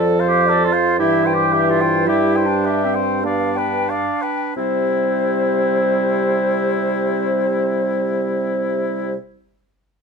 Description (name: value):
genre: classical, slow romantic movement for wind quintet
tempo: 44-59 BPM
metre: 3/4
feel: rubato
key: C major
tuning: A4 = 441 Hz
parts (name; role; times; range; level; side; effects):
- bright concert flute; melody; 0.0-9.1 s; C5 to G5; -23 LUFS; left 7 dB; none
- warm oboe; second line; 0.0-9.1 s; E4 to D5; -24 LUFS; left 5 dB; none
- clear French horn; accompaniment; 0.0-9.2 s; E3 to B3; -24 LUFS; equal; none
- clear clarinet; accompaniment; 0.0-9.1 s; C4 to A4; -21 LUFS; right 6 dB; none
- dark bassoon; bass; 0.0-9.1 s; F2 to C3; -22 LUFS; right 2 dB; none
room: moderate studio reverb, RT60 0.8 s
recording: minimal, uncompressed stereo recording, faint mains hum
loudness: -16 LUFS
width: side -5 dB against mid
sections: 0.0-4.6 A section; 4.6-8.4 B section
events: slowing down 0.0-4.6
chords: 0.0 Dm7/F; 1.0 C/G; 3.3 G7; 4.6 C